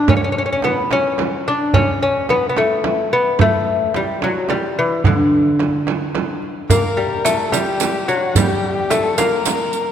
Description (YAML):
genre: Persian modal ensemble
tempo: 72 BPM (dotted quarters)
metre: 6/8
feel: straight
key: D dastgah mahur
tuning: A4 = 439 Hz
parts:
  - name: lute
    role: melody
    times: 0.0-9.9 s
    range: D3 to D4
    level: -17 LUFS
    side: left 2 dB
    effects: none
  - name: frame drum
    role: percussion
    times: 0.1-9.6 s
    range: none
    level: -23 LUFS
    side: right 6 dB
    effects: none
  - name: tombak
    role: percussion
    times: 0.1-9.6 s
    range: none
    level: -22 LUFS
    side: right 2 dB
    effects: none
  - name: warm kamancheh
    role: second line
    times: 6.7-9.9 s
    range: F#4 to Bb4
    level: -23 LUFS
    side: left 4 dB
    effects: none
  - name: riq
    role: percussion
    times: 6.7-9.8 s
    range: none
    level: -26 LUFS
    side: right 7 dB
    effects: none
room: wet concert hall reverb, RT60 2.6 s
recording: none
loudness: -15 LUFS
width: side -9 dB against mid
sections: 0.0-6.7 A section; 6.7-9.9 B section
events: none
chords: none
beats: | 0.08 0.91 | 1.74 2.56 | 3.39 4.22 | 5.05 5.88 | 6.70 7.53 | 8.36 9.18